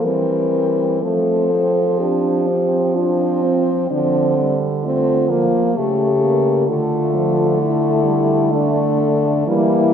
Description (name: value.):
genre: classical, lyrical piece for horn quartet.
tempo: 64 BPM.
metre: 3/4.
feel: uneven beats, rubato.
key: unclear.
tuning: A4 = 441 Hz.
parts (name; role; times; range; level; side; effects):
mellow French horn; melody; 0.0-9.9 s; D4 to Bb4; -19 LUFS; left 5 dB; none.
warm French horn; second line; 0.0-9.9 s; F3 to D4; -22 LUFS; right 6 dB; none.
warm French horn; accompaniment; 0.0-9.9 s; A3 to C4; -20 LUFS; left 1 dB; none.
warm French horn; bass; 0.0-9.9 s; C#3 to F3; -22 LUFS; right 3 dB; none.
room: moderate concert hall reverb, RT60 2.1 s.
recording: minimal, uncompressed stereo recording, lossy compression artefacts.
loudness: -15 LUFS.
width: side -8 dB against mid.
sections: 0.0-9.9 A section.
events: none.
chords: 0.1 C7/E; 1.0 F; 3.9 Dm7; 5.8 A7/C#; 6.7 Dm.